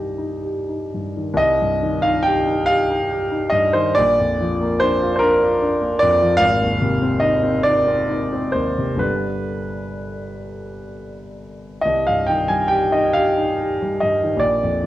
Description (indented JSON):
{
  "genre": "classical, romantic nocturne for solo piano",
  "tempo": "40-52 BPM (dotted quarters)",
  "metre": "6/8",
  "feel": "rubato",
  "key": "C minor",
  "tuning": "A4 = 440 Hz",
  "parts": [
    { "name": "warm grand piano", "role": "solo", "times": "0.0-14.9 s", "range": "G1 to Ab5", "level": "-17 LUFS", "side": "equal", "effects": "none" }
  ],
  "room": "wet recital hall reverb, RT60 1.3 s",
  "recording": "worn, warbling old tape, cassette tape, warbly pitch drift",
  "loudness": "-16 LUFS",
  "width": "side -14 dB against mid",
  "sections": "0.0-1.4 A section; 1.4-14.9 A section",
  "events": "none",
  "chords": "0.0 Cm; 4.0 Bb; 6.4 Ab; 9.0 G; 11.8 Cm",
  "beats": "| 1.38 2.68 | 3.97 5.23 | 6.41 7.66 | 9.01 10.41 | 11.83 13.14 | 14.41"
}